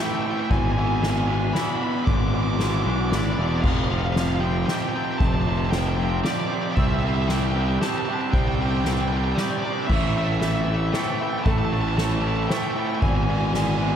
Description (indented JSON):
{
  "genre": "post-rock",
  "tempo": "115 BPM",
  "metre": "3/4",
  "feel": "straight",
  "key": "A minor",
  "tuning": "A4 = 439 Hz",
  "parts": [
    { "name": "nasal lead guitar with a parked wah", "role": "melody", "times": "0.0-14.0 s", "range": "D5 to D6", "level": "-30 LUFS", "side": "equal", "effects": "overdrive, analog delay" },
    { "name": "twangy electric guitar", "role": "arpeggios", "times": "0.0-14.0 s", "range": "A2 to A4", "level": "-34 LUFS", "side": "left 1 dB", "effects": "lush chorus, analog delay" },
    { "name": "raw garage guitar", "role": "riff", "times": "0.0-14.0 s", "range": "E2 to C4", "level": "-26 LUFS", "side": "right 1 dB", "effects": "overdrive" },
    { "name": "fuzz picked electric bass", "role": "bass", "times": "0.5-14.0 s", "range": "E1 to C2", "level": "-24 LUFS", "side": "left 1 dB", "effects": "overdrive" },
    { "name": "soft-mallet drum kit", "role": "drums", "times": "0.5-13.7 s", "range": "crash cymbal, kick drum, ride cymbal, snare drum", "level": "-26 LUFS", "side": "equal", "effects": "none" },
    { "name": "felt-muted upright piano", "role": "arpeggios", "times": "9.9-14.0 s", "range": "A4 to E5", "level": "-35 LUFS", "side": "equal", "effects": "analog chorus, analog delay" }
  ],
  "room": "moderate lush hall reverb, RT60 2.6 s",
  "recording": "dreamy mix soaked in reverb",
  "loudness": "-20 LUFS",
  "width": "side -9 dB against mid",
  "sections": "0.0-14.0 A section",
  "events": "none",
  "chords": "0.0 Am; 0.5 E7/G#; 3.6 Fsus2; 6.8 Cadd9; 9.9 Am; 13.0 E7/G#",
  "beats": "| 0.51 1.03 1.55 | 2.07 2.60 3.12 | 3.64 4.16 4.68 | 5.20 5.72 6.25 | 6.77 7.29 7.81 | 8.33 8.85 9.37 | 9.90 10.42 10.94 | 11.46 11.98 12.50 | 13.03 13.55"
}